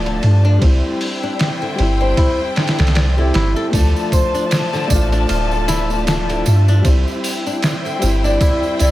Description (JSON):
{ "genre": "trip hop", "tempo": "77 BPM", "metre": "4/4", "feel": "swing 57% on 16ths", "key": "unclear", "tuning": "A4 = 441 Hz", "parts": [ { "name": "dark upright piano", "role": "accompaniment", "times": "0.0-8.9 s", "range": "F3 to G4", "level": "-23 LUFS", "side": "left 1 dB", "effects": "tremolo, vintage 12-bit sampler grit" }, { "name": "rich studio string section", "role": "sustained chords", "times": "0.0-8.9 s", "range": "F3 to A5", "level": "-25 LUFS", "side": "left 3 dB", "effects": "none" }, { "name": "soft 808-style bass", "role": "bass", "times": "0.0-8.9 s", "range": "D1 to G2", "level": "-15 LUFS", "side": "equal", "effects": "tube saturation" }, { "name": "flamenco guitar", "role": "arpeggios", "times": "0.1-8.9 s", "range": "D3 to D5", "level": "-26 LUFS", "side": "left 2 dB", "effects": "tape echo" }, { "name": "trip hop sampler-style drum kit", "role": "drums", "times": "0.1-8.9 s", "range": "hi-hat, kick drum, ride cymbal, snare drum", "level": "-20 LUFS", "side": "equal", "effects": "overdrive" }, { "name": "mellow electric guitar", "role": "melody", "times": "2.0-8.9 s", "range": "E4 to D5", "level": "-23 LUFS", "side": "equal", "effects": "tape echo" }, { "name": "tambourine", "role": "percussion", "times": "3.7-8.9 s", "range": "none", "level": "-31 LUFS", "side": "right 6 dB", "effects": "none" }, { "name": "flickering grainy texture", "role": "texture", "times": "4.4-8.9 s", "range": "E4 to E5", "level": "-30 LUFS", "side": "right 1 dB", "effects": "built-in reverb" } ], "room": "small room reverb", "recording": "none", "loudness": "-14 LUFS", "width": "side -15 dB against mid", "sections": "0.0-8.9 A section", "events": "none", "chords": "0.0 Dm; 0.6 C; 3.7 Dm; 6.9 C" }